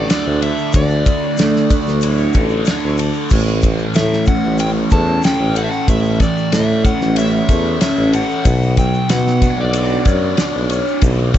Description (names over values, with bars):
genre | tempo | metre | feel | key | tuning
psychedelic rock | 93 BPM | 4/4 | straight | unclear | A4 = 441 Hz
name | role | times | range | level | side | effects
overdriven slide guitar | melody | 0.0-11.4 s | D5 to A5 | -23 LUFS | equal | dub echo
fuzz guitar | riff | 0.0-11.4 s | A2 to C#5 | -18 LUFS | equal | distortion, phaser
clear tuba | bass | 0.0-11.3 s | A1 to D3 | -18 LUFS | equal | none
damped 70s drum kit | drums | 0.1-11.4 s | crash cymbal, kick drum, ride cymbal, snare drum | -18 LUFS | equal | none
tube shaker | percussion | 0.1-11.4 s | none | -37 LUFS | left 9 dB | none
room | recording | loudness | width
small room ambience | echo-heavy mix, nothing above 8.0 kHz | -13 LUFS | side -11 dB against mid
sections
0.0-11.4 A section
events
none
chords
0.0 Dsus2; 3.3 A; 8.5 Bmadd9